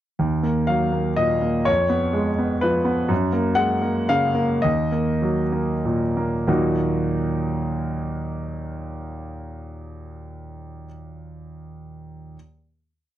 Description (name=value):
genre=neoclassical minimalist piano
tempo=94-127 BPM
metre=3/4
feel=rubato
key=Eb minor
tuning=A4 = 441 Hz
part: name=clear concert grand piano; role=solo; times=0.2-12.4 s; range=Eb2 to Gb5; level=-21 LUFS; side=equal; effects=none
room=light reverb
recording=dry, close 1970s-style studio recording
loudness=-20 LUFS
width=side -12 dB against mid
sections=0.2-6.5 A section; 6.5-10.1 final chord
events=slowing down 2.4-6.5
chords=0.2 Ebmadd9; 1.7 Db7/F; 3.1 Gbadd9; 4.7 Ebm